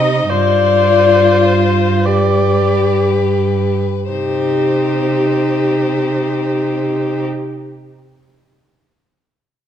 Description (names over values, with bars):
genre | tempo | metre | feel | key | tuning
classical, slow romantic movement for string quartet | 28-38 BPM (dotted quarters) | 6/8 | rubato | C minor | A4 = 441 Hz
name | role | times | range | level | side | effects
rich violin | melody | 0.0-7.2 s | B4 to Eb5 | -18 LUFS | left 7 dB | none
clear violin | second line | 0.0-7.3 s | Eb4 to G4 | -17 LUFS | left 4 dB | none
clear viola | accompaniment | 0.0-7.3 s | Eb4 to Eb5 | -20 LUFS | right 2 dB | none
clear cello | bass | 0.0-7.3 s | G2 to C3 | -18 LUFS | right 5 dB | none
room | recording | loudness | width
wet recital hall reverb, RT60 1.7 s | dark, warm production | -12 LUFS | side -9 dB against mid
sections
0.0-4.1 A section; 4.1-8.3 B section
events
slowing down 0.0-4.1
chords
0.3 G7sus4; 2.0 G; 4.1 Cm